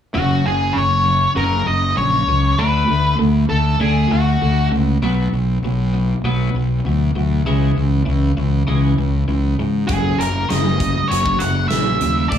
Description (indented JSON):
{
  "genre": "quiet-loud alternative rock",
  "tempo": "99 BPM",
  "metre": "4/4",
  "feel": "straight",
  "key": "unclear",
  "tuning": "A4 = 440 Hz",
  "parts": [
    { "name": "octave-fuzz lead guitar", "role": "melody", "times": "0.1-4.7, 9.9-12.4 s", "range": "F#4 to F#5", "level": "-19 LUFS", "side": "equal", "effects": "distortion" },
    { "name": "twelve-string electric guitar", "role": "arpeggios", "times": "0.1-12.4 s", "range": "F#2 to D4", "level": "-22 LUFS", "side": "left 1 dB", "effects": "analog chorus" },
    { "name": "fuzz fingered electric bass", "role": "bass", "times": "0.2-12.4 s", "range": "F#1 to G#2", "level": "-18 LUFS", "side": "equal", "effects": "overdrive" },
    { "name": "huge arena drum kit", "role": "drums", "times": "9.9-12.4 s", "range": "hi-hat, kick drum, snare drum", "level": "-21 LUFS", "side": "equal", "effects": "none" }
  ],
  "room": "moderate large studio reverb, RT60 1.2 s, small room ambience",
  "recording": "none",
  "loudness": "-15 LUFS",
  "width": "side -9 dB against mid",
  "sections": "0.1-12.4 A section",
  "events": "none",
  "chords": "0.1 F#5; 2.6 D; 5.0 Bm; 7.5 C#m; 9.9 F#5"
}